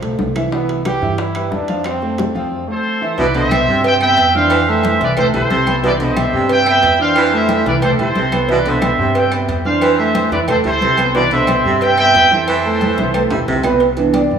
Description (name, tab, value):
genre	latin, salsa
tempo	181 BPM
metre	4/4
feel	straight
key	C major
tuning	A4 = 440 Hz
part	warm baby grand piano	accompaniment	0.0-14.4 s	B2 to E6	-19 LUFS	right 2 dB	none
part	upright bass	bass	0.0-14.4 s	B1 to G2	-23 LUFS	left 1 dB	none
part	congas	percussion	0.0-14.4 s	none	-26 LUFS	left 1 dB	none
part	timbales and agogo bells	percussion	0.0-14.3 s	none	-27 LUFS	right 4 dB	none
part	bongos and cowbell	percussion	0.2-14.3 s	none	-22 LUFS	right 1 dB	none
part	claves	percussion	0.4-13.8 s	none	-36 LUFS	right 2 dB	none
part	brilliant trombone	melody	0.5-2.7 s	B3 to G4	-24 LUFS	right 1 dB	none
part	bright trumpet section	melody	2.7-13.4 s	A4 to G5	-15 LUFS	right 1 dB	none
part	breathy baritone saxophone	second line	3.2-13.7 s	B2 to G3	-22 LUFS	right 2 dB	none
room	wet lush hall reverb, RT60 2.7 s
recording	rough home demo mix, studio reverb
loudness	-12 LUFS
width	side -7 dB against mid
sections	0.0-3.2 A section; 3.2-13.8 B section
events	drum fill 12.8-13.8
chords	0.0 Fmaj7 (rootless); 0.5 Cmaj9; 1.9 Fmaj7; 3.2 Cmaj9; 4.5 Fmaj7; 5.8 Cmaj9; 7.2 Fmaj7; 8.5 Cmaj9; 12.5 Fmaj7; 13.8 Cmaj9